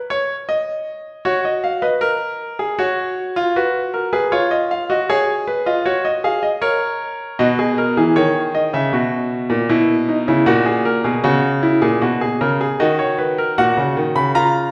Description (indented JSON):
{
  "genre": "classical, baroque-style 3-part fugue for grand piano",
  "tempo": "78 BPM",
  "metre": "4/4",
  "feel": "straight",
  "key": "unclear",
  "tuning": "A4 = 439 Hz",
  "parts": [
    { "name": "bright concert grand piano", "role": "solo", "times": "0.1-14.7 s", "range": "A#2 to B5", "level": "-18 LUFS", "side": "equal", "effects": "none" }
  ],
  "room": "wet recital hall reverb, RT60 1.6 s",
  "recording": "recorded in a church or concert hall",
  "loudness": "-18 LUFS",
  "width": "mono",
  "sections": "0.0-14.7 A section",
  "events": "none",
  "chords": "0.0 N.C.; 1.2 F#; 2.8 G#m7; 4.3 C#/E#; 5.9 F#; 7.4 B; 8.9 C#m7; 10.5 F#7/A#; 12.0 B; 13.6 F#/A#"
}